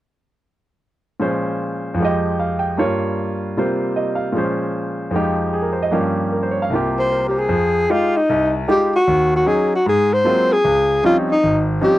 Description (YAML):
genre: jazz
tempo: 152 BPM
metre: 4/4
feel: swing 66% on 8ths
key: F minor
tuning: A4 = 439 Hz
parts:
  - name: clear concert grand piano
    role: accompaniment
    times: 1.2-12.0 s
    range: Ab1 to G5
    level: -19 LUFS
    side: equal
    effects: none
  - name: breathy alto saxophone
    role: melody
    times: 7.0-12.0 s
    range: Eb4 to C5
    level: -15 LUFS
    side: left 1 dB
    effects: none
room: light reverb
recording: dry, close 1970s-style studio recording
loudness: -16 LUFS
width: side -15 dB against mid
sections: 1.2-7.5 A section; 7.5-12.0 B section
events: none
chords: 1.2 Bbm7; 2.0 Fm9; 2.8 Gm7b5; 3.6 C7sus4; 4.3 Bbm7; 5.1 Fm9; 5.9 Gm7b5; 6.7 C7sus4; 7.5 Fm9; 9.1 Ebm7; 9.9 Ab13; 10.6 Dbmaj9#11